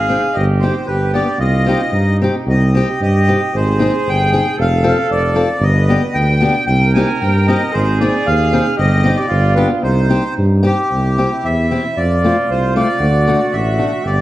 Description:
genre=alpine folk, alpine dance band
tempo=114 BPM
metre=2/4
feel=rubato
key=C minor, C major from 10.9 s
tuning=A4 = 438 Hz
part: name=accordion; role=melody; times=0.0-14.2 s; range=G4 to Ab5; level=-18 LUFS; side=equal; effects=none
part: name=mellow trumpet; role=second line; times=0.0-14.2 s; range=Eb4 to B4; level=-22 LUFS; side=right 4 dB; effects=analog delay
part: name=mellow tuba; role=bass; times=0.0-14.2 s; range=F1 to G2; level=-15 LUFS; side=equal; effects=none
part: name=fingerpicked acoustic archtop guitar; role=accompaniment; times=0.1-13.9 s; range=A3 to A4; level=-20 LUFS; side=left 2 dB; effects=none
room=wet recital hall reverb, RT60 1.5 s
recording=dark, warm production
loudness=-12 LUFS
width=side -15 dB against mid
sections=0.0-2.5 A section; 2.5-10.9 A section; 10.9-14.2 B section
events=none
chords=0.4 Cm/G; 0.9 G; 1.4 Cm; 3.5 Ab; 4.6 F; 5.6 G; 6.7 Cm; 7.8 Ab; 8.8 Cm/G; 9.3 G; 9.8 Cm; 10.9 C; 12.0 F; 13.0 D

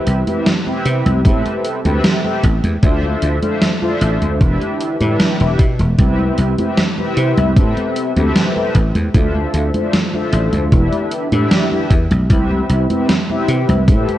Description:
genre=vaporwave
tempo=76 BPM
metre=4/4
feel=straight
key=C major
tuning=A4 = 435 Hz
part: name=mellow synth brass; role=accompaniment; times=0.0-14.2 s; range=C4 to E5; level=-19 LUFS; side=left 1 dB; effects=wide subtle chorus, tape echo
part: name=dry thumbed slap bass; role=bass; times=0.1-14.0 s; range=E1 to C3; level=-16 LUFS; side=equal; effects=none
part: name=gated 80s digital drum machine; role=drums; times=0.1-14.2 s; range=congas, hi-hat, snare drum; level=-19 LUFS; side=right 1 dB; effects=gated reverb, gated reverb snare, small room reverb
part: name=electronic kick drum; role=drums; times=1.2-14.0 s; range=none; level=-14 LUFS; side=equal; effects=small room reverb
room=light reverb, digital ambience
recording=cassette tape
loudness=-13 LUFS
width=side -13 dB against mid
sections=0.0-14.2 A section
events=none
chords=0.0 Cmaj7; 1.3 Am9; 2.8 Dm9; 4.4 Em7; 6.0 Cmaj7; 7.6 Am9; 9.1 Dm9; 10.7 Em7; 12.3 Cmaj7

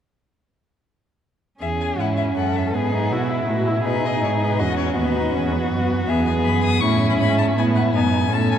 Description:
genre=quick classical-period movement for string quartet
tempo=162 BPM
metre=3/4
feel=rubato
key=E major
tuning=A4 = 443 Hz
part: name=rich violin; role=melody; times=1.6-8.6 s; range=B4 to D#6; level=-26 LUFS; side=left 6 dB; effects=none
part: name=rich violin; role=second line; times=1.6-8.6 s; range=D#4 to A4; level=-25 LUFS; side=left 2 dB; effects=none
part: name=rich viola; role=accompaniment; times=1.6-8.6 s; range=B3 to F#4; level=-23 LUFS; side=right 1 dB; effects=none
part: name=rich cello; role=bass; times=1.6-8.6 s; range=D#2 to B2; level=-22 LUFS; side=right 2 dB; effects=none
room=wet cathedral reverb, RT60 5.5 s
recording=dark, warm production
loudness=-18 LUFS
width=side -9 dB against mid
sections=1.6-8.6 A section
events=none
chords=1.6 E; 2.7 E/G#; 3.9 B; 5.0 B/D#; 6.1 E; 7.2 E/G#

